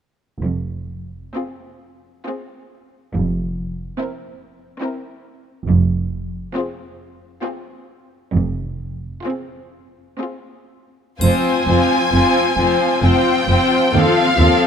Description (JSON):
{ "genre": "classical, slow romantic movement for symphony orchestra", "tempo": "56-73 BPM", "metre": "3/4", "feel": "rubato", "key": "F minor", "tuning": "A4 = 440 Hz", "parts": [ { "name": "warm studio cello section", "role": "bass", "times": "0.4-14.5 s", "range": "Eb2 to F2", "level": "-21 LUFS", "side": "right 2 dB", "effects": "none" }, { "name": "warm studio double bass section", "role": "bass", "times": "0.4-14.5 s", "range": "F1 to Eb2", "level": "-21 LUFS", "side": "right 2 dB", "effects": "none" }, { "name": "rich studio violin section", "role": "melody", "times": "1.4-14.7 s", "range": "Ab4 to Ab5", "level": "-20 LUFS", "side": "left 3 dB", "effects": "none" }, { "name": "warm studio violin section", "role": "second line", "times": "1.4-14.7 s", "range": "E4 to C5", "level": "-21 LUFS", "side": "left 3 dB", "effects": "none" }, { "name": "rich studio viola section", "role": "accompaniment", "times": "1.4-14.7 s", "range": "F3 to C4", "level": "-20 LUFS", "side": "equal", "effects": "none" }, { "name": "triangle", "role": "percussion", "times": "11.2-13.0 s", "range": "none", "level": "-32 LUFS", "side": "equal", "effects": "none" } ], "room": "light reverb", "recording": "close, detailed microphones", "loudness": "-16 LUFS", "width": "side -7 dB against mid", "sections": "0.4-11.2 A section; 11.2-14.7 B section", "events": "none", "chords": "0.4 Fm; 13.9 F7", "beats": "| 0.42 1.36 2.28 | 3.15 3.99 4.82 | 5.68 6.56 7.43 | 8.34 9.26 10.20 | 11.22 12.13 13.04 | 13.95" }